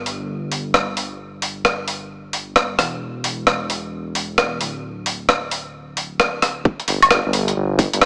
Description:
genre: UK garage, two-step garage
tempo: 132 BPM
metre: 4/4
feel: swing 64% on 16ths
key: unclear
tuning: A4 = 440 Hz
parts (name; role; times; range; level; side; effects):
- dark detuned saw bass; bass; 0.0-8.0 s; D1 to G1; -30 LUFS; equal; none
- breakbeat sampler-style drum kit; drums; 0.1-8.1 s; hi-hat, rim click, woodblock; -20 LUFS; equal; small room ambience
- electronic kick drum; drums; 6.7-7.9 s; none; -18 LUFS; equal; small room ambience
room: light reverb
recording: small speaker sound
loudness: -21 LUFS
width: mono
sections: 0.0-6.7 A section; 6.7-8.1 B section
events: drop 6.7-8.1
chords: none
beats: 0.29 0.74 | 1.20 1.65 2.11 2.56 | 3.02 3.47 3.92 4.38 | 4.83 5.29 5.74 6.20 | 6.65 7.11 7.56 8.02

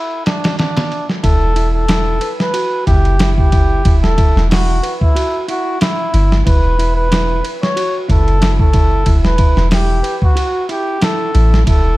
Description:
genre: trip hop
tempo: 92 BPM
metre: 4/4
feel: swing 55% on 16ths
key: E minor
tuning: A4 = 440 Hz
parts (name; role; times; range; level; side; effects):
- trumpet with cup mute; melody; 0.0-12.0 s; D4 to C#5; -19 LUFS; equal; tape echo
- dusty soul sampler-style drum kit; drums; 0.3-11.8 s; hi-hat, kick drum, ride cymbal, snare drum; -15 LUFS; equal; low-pass filter on cymbals, low-pass filter on snare, low-pass filter on hats, low-pass filter on kick, low-pass filter on room
- mellow electric guitar; arpeggios; 1.2-12.0 s; E4 to B4; -23 LUFS; right 3 dB; vintage 12-bit sampler grit, ping-pong delay
- soft 808-style bass; bass; 1.2-12.0 s; E1 to A1; -14 LUFS; equal; none
room: digital ambience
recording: dark, warm production, vinyl crackle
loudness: -12 LUFS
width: side -18 dB against mid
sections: 0.0-1.2 A section; 1.2-12.0 B section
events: none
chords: 0.0 N.C.; 1.2 Esus4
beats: 0.59 | 1.24 1.89 2.55 3.20 | 3.85 4.50 5.16 5.81 | 6.46 7.11 7.76 8.42 | 9.07 9.72 10.37 11.02 | 11.68

